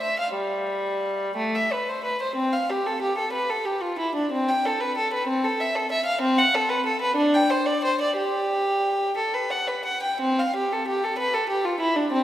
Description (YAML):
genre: classical, baroque-style suite movement for unaccompanied violin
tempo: 54-65 BPM (dotted quarters)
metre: 6/8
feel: rubato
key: G major from 6.2 s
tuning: A4 = 440 Hz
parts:
  - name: rich violin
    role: solo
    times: 0.0-12.2 s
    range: G3 to G5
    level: -22 LUFS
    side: equal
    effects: none
room: wet church reverb, RT60 3.5 s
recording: heard from further back in the room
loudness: -22 LUFS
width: side -12 dB against mid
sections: 0.0-10.2 A section; 10.2-12.2 A section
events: none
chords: none